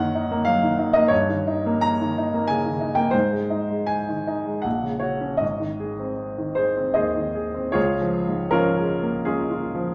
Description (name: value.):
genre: classical, romantic character piece for solo piano.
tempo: 74-96 BPM.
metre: 3/4.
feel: rubato.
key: Db major.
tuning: A4 = 440 Hz.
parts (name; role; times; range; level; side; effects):
bright grand piano; solo; 0.0-9.9 s; Ab1 to Bb5; -23 LUFS; equal; none.
room: wet recital hall reverb, RT60 1.4 s.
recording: dark, warm production.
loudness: -23 LUFS.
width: mono.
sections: 0.0-7.8 A section; 7.8-9.9 B section.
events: none.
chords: 0.0 D#m/F#; 1.1 Eb7/G; 3.1 Ab; 4.7 Gb/Bb; 5.4 Ab; 7.8 Db.